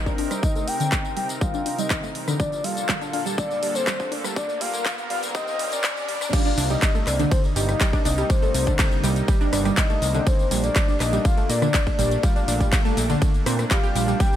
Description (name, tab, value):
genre	progressive house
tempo	122 BPM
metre	4/4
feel	straight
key	unclear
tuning	A4 = 442 Hz
part	soft octave-layered synth lead	melody	0.0-14.4 s	C5 to G5	-28 LUFS	left 3 dB	chorus, tremolo, dub echo
part	supersaw pad	sustained chords	0.0-14.4 s	Bb2 to Bb4	-32 LUFS	right 1 dB	sidechain pumping
part	riser	sound effects	0.7-6.3 s	none	-36 LUFS	right 3 dB	none
part	analog pluck	arpeggios	0.1-14.3 s	D3 to G5	-28 LUFS	right 2 dB	chorus, sidechain pumping, dub echo
part	big-room dance drum kit	drums	0.1-14.4 s	crash cymbal, handclaps, hi-hat, ride cymbal, rim click, tambourine	-28 LUFS	left 1 dB	overdrive, high-pass filter on perc, high-pass filter on hats, high-pass filter on snare, high-pass filter on cymbals
part	electronic kick drum	drums	0.1-14.3 s	none	-22 LUFS	equal	overdrive
part	plucky analog bass	bass	6.6-14.1 s	G1 to Bb2	-24 LUFS	equal	sidechain pumping
room	digital ambience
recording	high-pass filter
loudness	-20 LUFS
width	side -11 dB against mid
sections	0.0-6.3 A section; 6.3-14.4 B section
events	build-up 0.0-6.3; filter sweep on synth pluck 0.0-6.3; filter sweep 0.0-6.3; riser 0.7-6.3; drop 6.3-14.4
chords	0.0 Cm7; 2.4 Bbmaj7; 6.3 Cm7; 10.3 Bbmaj7